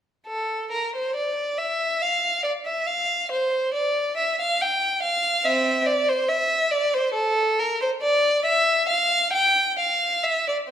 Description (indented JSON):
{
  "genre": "classical, baroque-style suite movement for unaccompanied violin",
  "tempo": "69 BPM",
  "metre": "4/4",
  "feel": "rubato",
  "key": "F major",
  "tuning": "A4 = 439 Hz",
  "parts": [
    { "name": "warm violin", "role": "solo", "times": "0.3-10.6 s", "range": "C4 to G5", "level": "-20 LUFS", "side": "equal", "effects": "none" }
  ],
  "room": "wet recital hall reverb, RT60 1.4 s",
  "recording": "minimal, uncompressed stereo recording",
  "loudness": "-20 LUFS",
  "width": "side -10 dB against mid",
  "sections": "0.3-10.7 A section",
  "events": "none",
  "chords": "none",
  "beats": "| 0.27 1.15 2.02 2.88 | 3.75 4.61 5.45 6.29 | 7.15 8.01 8.88 9.77"
}